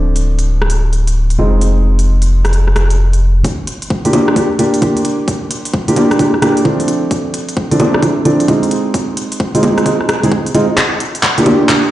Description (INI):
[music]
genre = UK garage, two-step garage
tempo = 131 BPM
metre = 4/4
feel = swing 64% on 16ths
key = G minor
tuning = A4 = 440 Hz
[part]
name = dark grand piano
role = stabs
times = 0.0-11.8 s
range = F3 to Ab4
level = -14 LUFS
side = right 1 dB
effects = low-pass filter, dub echo
[part]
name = soft dub sub bass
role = bass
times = 0.0-11.6 s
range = D1 to C2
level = -13 LUFS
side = equal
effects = high-pass filter
[part]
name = garage drum kit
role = drums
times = 0.2-11.8 s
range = bongos, handclaps, hi-hat, rim click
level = -18 LUFS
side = equal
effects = none
[part]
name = electronic kick drum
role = drums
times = 3.4-11.8 s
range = none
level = -19 LUFS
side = equal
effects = high-pass filter on kick, high-pass filter on room
[sound]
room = light reverb, digital ambience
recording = played on a big sound system in a bare room, large studio reverb, nothing above 10.8 kHz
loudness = -11 LUFS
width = side -14 dB against mid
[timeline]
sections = 0.0-3.4 A section; 3.4-11.9 B section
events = filter sweep on drum 0.0-3.4; build-up 3.4-11.9; drum fill 10.8-11.9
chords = 0.0 Dm7; 1.4 Fm7; 3.4 Gm7; 6.9 Dm7; 8.7 Fm7; 10.8 Gm7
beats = 0.24 0.70 1.16 | 1.61 2.07 2.53 2.99 | 3.44 3.90 4.36 4.82 | 5.28 5.74 6.19 6.65 | 7.11 7.57 8.03 8.48 | 8.94 9.40 9.86 10.31 | 10.77 11.23 11.69